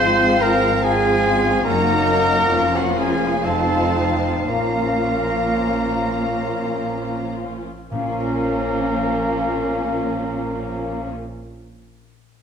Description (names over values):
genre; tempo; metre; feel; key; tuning
classical, slow romantic movement for symphony orchestra; 49-74 BPM; 3/4; rubato; Bb minor; A4 = 435 Hz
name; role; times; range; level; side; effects
rich symphonic violin section; melody; 0.0-11.1 s; Db4 to C6; -30 LUFS; left 3 dB; none
dark symphonic violin section; second line; 0.0-11.1 s; Bb3 to Bb4; -30 LUFS; left 3 dB; none
mellow clarinet; second line; 0.0-11.1 s; C4 to Eb4; -29 LUFS; left 1 dB; none
mellow flute section; second line; 0.0-11.1 s; F5 to Gb5; -27 LUFS; left 4 dB; none
rich symphonic viola section; accompaniment; 0.0-11.1 s; F3 to C4; -27 LUFS; right 1 dB; none
warm bassoon; accompaniment; 0.0-11.1 s; F3 to C4; -28 LUFS; right 1 dB; none
mellow French horn section; sustained chords; 0.0-11.1 s; F3 to Eb4; -28 LUFS; left 2 dB; none
concert harp; arpeggios; 0.0-11.8 s; F2 to F5; -32 LUFS; left 9 dB; none
warm trumpet; stabs; 0.0-11.1 s; Gb4 to C5; -23 LUFS; right 2 dB; none
rich studio cello section; bass; 0.0-11.1 s; F2 to Bb2; -29 LUFS; right 4 dB; none
rich symphonic double bass section; bass; 0.0-11.1 s; F1 to Bb1; -31 LUFS; right 4 dB; none
timpani; percussion; 7.9-11.1 s; Bb2; -36 LUFS; right 1 dB; none
room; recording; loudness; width
wet recital hall reverb, RT60 1.4 s; none; -17 LUFS; side -7 dB against mid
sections
0.0-7.9 A section; 7.9-11.2 B section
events
slowing down 0.4-7.9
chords
0.0 Fm/Ab; 1.6 Ebm/Gb; 2.5 Bbm/F; 3.4 F7; 4.5 Bbm